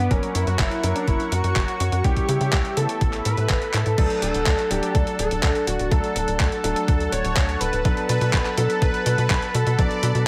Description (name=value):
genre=italo disco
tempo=124 BPM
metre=4/4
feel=straight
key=unclear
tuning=A4 = 440 Hz
part: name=unison lead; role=melody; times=0.0-10.2 s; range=B3 to D5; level=-29 LUFS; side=equal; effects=lush chorus, digital delay
part: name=lush unison pad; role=sustained chords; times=0.0-10.3 s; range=D4 to C#6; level=-32 LUFS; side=equal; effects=chorus
part: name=clear concert grand piano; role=stabs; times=0.0-10.3 s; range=E3 to A#4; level=-32 LUFS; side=equal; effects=none
part: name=tight sequencer bass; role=bass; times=0.0-10.2 s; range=D1 to C#3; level=-26 LUFS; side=equal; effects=none
part: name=dusty soul sampler-style drum kit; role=drums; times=0.1-10.2 s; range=crash cymbal, handclaps, hi-hat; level=-30 LUFS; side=equal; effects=overdrive
part: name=electronic kick drum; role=drums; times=0.1-9.9 s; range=none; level=-25 LUFS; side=equal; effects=none
room=light reverb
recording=none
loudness=-22 LUFS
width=mono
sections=0.0-4.0 A section; 4.0-10.3 B section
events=drum fill 3.7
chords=0.1 F#; 2.0 C#dim; 3.0 Asus2; 4.0 D; 7.9 Bm7